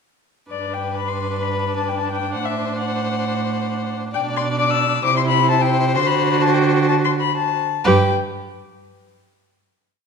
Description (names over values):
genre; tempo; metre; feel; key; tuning
quick classical-period movement for string quartet; 131 BPM; 4/4; uneven beats, rubato; G major; A4 = 439 Hz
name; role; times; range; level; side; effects
dark violin; melody; 0.5-8.1 s; D5 to E6; -22 LUFS; left 11 dB; none
rich violin; second line; 0.5-8.1 s; B4 to D5; -25 LUFS; left 4 dB; none
warm viola; accompaniment; 0.5-8.1 s; D4 to G4; -25 LUFS; right 3 dB; none
rich cello; bass; 0.5-8.1 s; G2 to D3; -22 LUFS; right 6 dB; none
room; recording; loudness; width
moderate scoring stage reverb, RT60 1.6 s; none; -17 LUFS; side -5 dB against mid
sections
0.5-7.9 A section; 7.9-9.8 final chord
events
none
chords
0.5 G; 2.3 D7/A; 4.1 Bmadd11; 5.1 C; 6.0 D7; 7.9 N.C.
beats
| 0.51 0.97 1.43 1.88 | 2.34 2.79 3.25 3.70 | 4.14 4.60 5.05 5.50 | 5.96 6.42 6.88 7.36 | 7.85